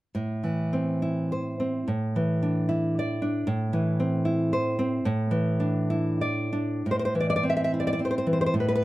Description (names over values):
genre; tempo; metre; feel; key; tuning
romantic piece for solo classical guitar; 88-118 BPM; 3/4; rubato; A minor; A4 = 440 Hz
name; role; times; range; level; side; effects
nylon-string guitar; solo; 0.1-8.8 s; A2 to E5; -24 LUFS; equal; none
room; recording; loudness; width
light reverb; dark, warm production; -24 LUFS; side -17 dB against mid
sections
0.1-6.8 A section; 6.8-8.8 B section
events
none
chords
0.1 Am; 1.9 Asus4; 3.5 Am; 5.0 Asus4; 6.8 Am